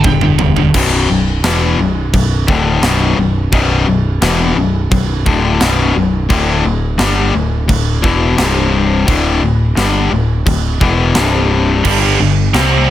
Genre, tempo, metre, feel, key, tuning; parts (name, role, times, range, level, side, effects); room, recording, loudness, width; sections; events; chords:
heavy metal; 86 BPM; 4/4; straight; B phrygian; A4 = 445 Hz
distorted electric guitar; riff; 0.0-12.9 s; B1 to C4; -14 LUFS; left 4 dB; overdrive
scooped high-gain guitar; riff; 0.0-0.7, 11.8-12.9 s; G2 to C4; -17 LUFS; right 12 dB; distortion
growling picked electric bass; bass; 0.0-12.9 s; B0 to C2; -16 LUFS; right 1 dB; overdrive
tight metal drum kit; drums; 0.0-12.7 s; china cymbal, crash cymbal, kick drum, snare drum, toms; -17 LUFS; right 1 dB
small room ambience; -11 LUFS; side -12 dB against mid
0.7-12.9 A section
drum fill 0.0-0.7
0.0 G5; 0.7 Bm; 6.3 D5; 8.4 C5; 9.1 D5; 11.2 C5; 11.8 G5